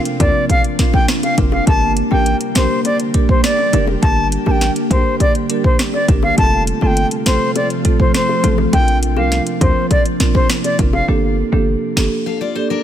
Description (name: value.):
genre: dancehall.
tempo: 102 BPM.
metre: 4/4.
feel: straight.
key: G minor.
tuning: A4 = 439 Hz.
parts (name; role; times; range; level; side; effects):
marimba with medium mallets; accompaniment; 0.0-12.7 s; A3 to Bb4; -21 LUFS; right 4 dB; sidechain pumping.
ethereal airy pad; sustained chords; 0.0-11.1 s; C3 to G4; -22 LUFS; equal; ensemble chorus, built-in reverb, sidechain pumping.
afro-pop drum kit; drums; 0.1-12.1 s; hi-hat, kick drum, rim click, snare drum; -16 LUFS; equal; none.
bright reedy wooden flute; melody; 0.2-11.1 s; C5 to A5; -19 LUFS; left 2 dB; ping-pong delay.
hard-hitting 808-style bass; bass; 0.2-12.1 s; F1 to D2; -17 LUFS; equal; none.
bongos; percussion; 0.2-11.1 s; none; -26 LUFS; left 10 dB; none.
picked steel-string acoustic guitar; arpeggios; 12.3-12.8 s; D4 to F5; -20 LUFS; left 8 dB; none.
room: small room ambience.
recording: none.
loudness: -13 LUFS.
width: side -10 dB against mid.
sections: 0.0-11.1 A section; 11.1-12.8 B section.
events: break 11.1-12.8.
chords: 0.0 Bbadd9; 1.7 Gm; 6.4 F; 8.7 Bbadd9; 11.1 Gmadd9.